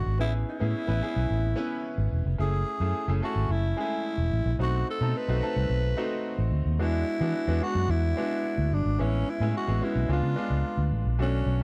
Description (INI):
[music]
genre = polished 1980s jazz-funk pop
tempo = 109 BPM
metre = 4/4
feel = straight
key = F# minor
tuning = A4 = 440 Hz
[part]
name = growling tenor saxophone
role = melody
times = 0.0-11.6 s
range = C#4 to B4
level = -34 LUFS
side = equal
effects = slapback echo
[part]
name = bright grand piano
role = accompaniment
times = 0.0-11.6 s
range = G#3 to B4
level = -35 LUFS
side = equal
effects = analog chorus
[part]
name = vintage muted fingered electric bass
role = bass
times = 0.0-11.6 s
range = E1 to E3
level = -28 LUFS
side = equal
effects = none
[sound]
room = studio ambience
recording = dry, close 1970s-style studio recording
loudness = -27 LUFS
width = mono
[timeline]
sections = 0.0-11.2 A section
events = none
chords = 0.2 Amaj7; 2.4 F#m9; 4.6 B7b9; 6.8 E7; 9.0 Amaj7; 10.1 C#7b9